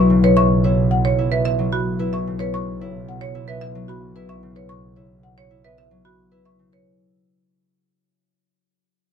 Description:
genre	classical, minimalist pattern music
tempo	111 BPM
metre	4/4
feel	straight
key	unclear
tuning	A4 = 440 Hz
part	marimba with soft mallets	melody	0.0-6.9 s	B4 to C#6	-24 LUFS	left 4 dB	none
part	concert harp	accompaniment	0.0-6.9 s	C#3 to E4	-20 LUFS	left 3 dB	none
part	marimba with medium hard mallets	arpeggios	0.0-6.9 s	F#4 to E5	-26 LUFS	right 8 dB	none
part	clear symphonic double bass section	bass	0.0-6.7 s	B1	-23 LUFS	right 3 dB	none
room	light reverb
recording	none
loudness	-16 LUFS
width	side -8 dB against mid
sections	0.0-6.9 A section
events	fade-out 0.0-6.9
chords	0.0 Esus2/B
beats	| 0.37 0.91 1.45 1.99 | 2.54 3.08 3.62 4.16 | 4.70 5.24 5.78 6.32

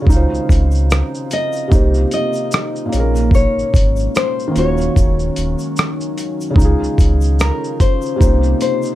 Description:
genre	lo-fi hip hop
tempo	74 BPM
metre	4/4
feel	swing 55% on 16ths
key	unclear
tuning	A4 = 439 Hz
part	felt-muted upright piano	accompaniment	0.0-8.9 s	Bb2 to F5	-21 LUFS	right 1 dB	low-pass filter
part	deep dark ambient pad	sustained chords	0.0-8.9 s	C3 to F4	-25 LUFS	left 1 dB	chorus, built-in reverb, low-pass filter
part	sub bass with octave	bass	0.1-8.5 s	Eb1 to Db2	-16 LUFS	equal	none
part	dusty soul sampler-style drum kit	drums	0.1-8.9 s	hi-hat, kick drum, rim click, shaker	-14 LUFS	equal	none
part	tube shaker	percussion	0.1-8.9 s	none	-40 LUFS	left 7 dB	none
part	nylon-string guitar	melody	1.3-8.9 s	Bb4 to Eb5	-21 LUFS	left 4 dB	low-pass filter, tape echo
room	light reverb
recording	none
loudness	-13 LUFS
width	side -14 dB against mid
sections	0.0-8.9 A section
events	none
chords	0.1 Dbmaj7; 1.7 Cm7; 2.9 Bbm7; 4.5 Ebm7; 6.6 Db; 8.2 Cm7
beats	0.09 0.90 | 1.71 2.52 3.33 4.14 | 4.95 5.76 6.58 7.39 | 8.20

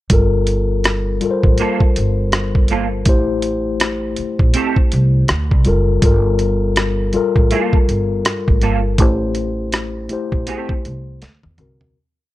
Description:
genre	R&B, neo-soul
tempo	81 BPM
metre	4/4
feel	swing 61% on 16ths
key	G dorian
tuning	A4 = 439 Hz
part	mellow tine electric piano	accompaniment	0.1-12.0 s	D3 to C5	-20 LUFS	left 4 dB	slow stereo tremolo
part	upright bass	bass	0.1-11.9 s	F#1 to E2	-19 LUFS	equal	none
part	boom bap sampler-style drum kit	drums	0.1-11.9 s	hi-hat, kick drum, rim click, snare drum, toms	-15 LUFS	equal	none
part	electric guitar through a small old amp	second line	1.6-10.7 s	Bb3 to A4	-21 LUFS	right 7 dB	ensemble chorus
room	digital ambience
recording	dark, warm production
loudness	-14 LUFS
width	side -16 dB against mid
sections	0.1-12.0 A section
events	fade-out 9.0-12.0; drum fill 11.2-12.0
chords	0.1 Gm9; 3.1 Am7; 5.3 D7b13; 6.0 Gm9; 9.0 Am7; 11.2 D7b13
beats	| 0.10 0.84 1.58 2.32 | 3.06 3.80 4.54 5.29 | 6.03 6.77 7.51 8.25 | 8.99 9.73 10.47 11.21

